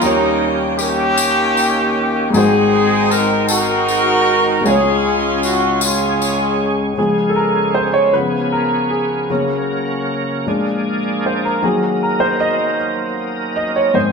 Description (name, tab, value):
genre	slow gospel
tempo	52 BPM (dotted quarters)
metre	6/8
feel	straight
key	Db major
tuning	A4 = 439 Hz
part	clear horn section	melody	0.0-6.9 s	G3 to Bb4	-15 LUFS	equal	none
part	clear grand piano	accompaniment	0.0-14.1 s	Ab1 to F5	-17 LUFS	left 1 dB	none
part	bright tonewheel organ	sustained chords	0.0-14.1 s	Db3 to Bb4	-22 LUFS	right 2 dB	fast rotary speaker, chorus vibrato
part	tambourine	percussion	0.0-6.6 s	none	-24 LUFS	left 4 dB	none
room	wet stone room reverb, RT60 1.2 s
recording	band playing live in one room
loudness	-14 LUFS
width	side -5 dB against mid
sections	0.0-7.0 A section; 7.0-14.1 B section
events	grand piano solo 7.0-14.1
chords	0.0 Eb7; 2.3 Ab7; 4.7 Db; 8.1 Db7; 9.3 Gb/Db; 10.5 Bb7; 11.6 Ebm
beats	| 0.01 1.17 | 2.33 3.49 | 4.65 5.81 | 6.97 8.14 | 9.30 10.46 | 11.62 12.79 | 13.95